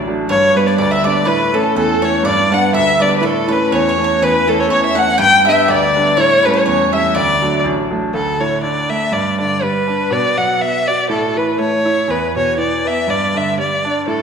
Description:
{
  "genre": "celtic folk, Celtic polka",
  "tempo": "122 BPM",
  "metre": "2/4",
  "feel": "swing 54% on 8ths",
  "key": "unclear",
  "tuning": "A4 = 440 Hz",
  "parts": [
    { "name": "bright grand piano", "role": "accompaniment", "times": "0.0-14.2 s", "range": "A1 to F#4", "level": "-18 LUFS", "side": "right 2 dB", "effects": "none" },
    { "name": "warm violin", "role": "melody", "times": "0.3-14.2 s", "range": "A4 to G5", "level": "-15 LUFS", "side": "left 1 dB", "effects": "none" },
    { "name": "dark fiddle", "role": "second line", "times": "0.3-7.7 s", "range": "A4 to G5", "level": "-22 LUFS", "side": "left 5 dB", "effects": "none" },
    { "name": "mandolin", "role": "second line", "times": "0.3-7.6 s", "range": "A4 to G5", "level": "-20 LUFS", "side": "right 1 dB", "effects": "none" }
  ],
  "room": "wet recital hall reverb, RT60 1.5 s",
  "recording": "recorded in a church or concert hall",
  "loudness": "-12 LUFS",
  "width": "side -6 dB against mid",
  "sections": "0.3-8.1 A section; 8.1-14.2 B section",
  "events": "none",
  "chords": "0.3 G; 1.3 A; 2.2 G; 3.2 A; 5.2 G; 6.2 A7; 7.1 D; 8.1 D5; 9.1 G; 10.1 B5; 11.1 A; 12.1 E5; 13.1 G5"
}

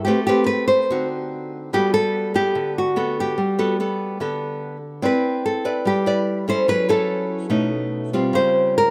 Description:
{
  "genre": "bossa nova",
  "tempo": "145 BPM",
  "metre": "4/4",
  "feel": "straight",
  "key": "G major, C major from 5.0 s",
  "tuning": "A4 = 439 Hz",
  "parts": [
    { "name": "nylon-string guitar", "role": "melody", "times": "0.0-8.9 s", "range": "F#4 to C5", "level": "-23 LUFS", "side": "equal", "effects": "none" },
    { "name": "nylon-string guitar", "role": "accompaniment", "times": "0.0-8.9 s", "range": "B2 to D5", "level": "-24 LUFS", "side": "equal", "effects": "none" }
  ],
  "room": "light reverb",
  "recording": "none",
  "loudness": "-21 LUFS",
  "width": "mono",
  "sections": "0.0-5.0 A section; 5.0-8.9 B section",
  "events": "none",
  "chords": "0.1 Am9; 0.9 D7b9; 1.7 Gmaj9; 5.0 Cmaj9; 6.7 F#m7; 7.5 B9; 8.3 Dbmaj7#11"
}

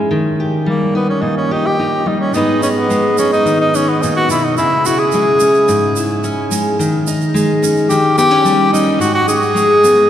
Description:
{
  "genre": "acoustic folk duo or small band",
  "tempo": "108 BPM",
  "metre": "4/4",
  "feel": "straight",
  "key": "G# minor",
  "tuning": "A4 = 440 Hz",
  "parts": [
    { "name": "fingerpicked steel-string acoustic guitar", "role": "accompaniment", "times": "0.0-10.1 s", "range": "G#2 to B4", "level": "-14 LUFS", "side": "equal", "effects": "none" },
    { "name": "clear tenor saxophone", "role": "melody", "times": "0.7-10.1 s", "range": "A#3 to G#4", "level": "-15 LUFS", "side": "equal", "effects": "none" },
    { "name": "tube shaker", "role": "percussion", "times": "2.3-10.0 s", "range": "none", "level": "-27 LUFS", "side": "right 8 dB", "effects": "none" }
  ],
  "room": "wet cathedral reverb, RT60 5.0 s",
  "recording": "recorded in a church or concert hall",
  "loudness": "-12 LUFS",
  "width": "side -10 dB against mid",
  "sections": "0.0-10.1 A section",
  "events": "tenor saxophone solo 0.0-10.1",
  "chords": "0.1 D#; 2.3 G#m; 4.6 C#m; 6.8 D#7sus4; 7.9 D#7; 9.0 G#m"
}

